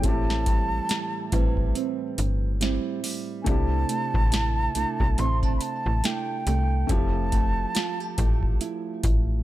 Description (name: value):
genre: contemporary R&B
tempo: 70 BPM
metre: 4/4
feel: swing 58% on 16ths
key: C major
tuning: A4 = 443 Hz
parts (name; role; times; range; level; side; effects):
- breathy mellow concert flute; melody; 0.0-8.6 s; G5 to C6; -30 LUFS; right 1 dB; ping-pong delay
- felt-muted upright piano; accompaniment; 0.0-9.4 s; Ab3 to G4; -35 LUFS; left 4 dB; none
- nylon-string guitar; arpeggios; 0.0-9.4 s; A2 to G4; -31 LUFS; right 7 dB; ping-pong delay
- slap-like FM bass; bass; 0.0-9.4 s; F1 to C2; -26 LUFS; equal; none
- booming analog drum machine; drums; 0.0-9.3 s; hi-hat, kick drum, snare drum; -25 LUFS; equal; none
- large celesta; texture; 1.3-2.5 s; B4; -39 LUFS; right 2 dB; ping-pong delay
room: little or no reverb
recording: none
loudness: -22 LUFS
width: side -14 dB against mid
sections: 0.0-9.4 A section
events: none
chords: 0.0 Am9; 3.5 C69; 6.9 Fmaj9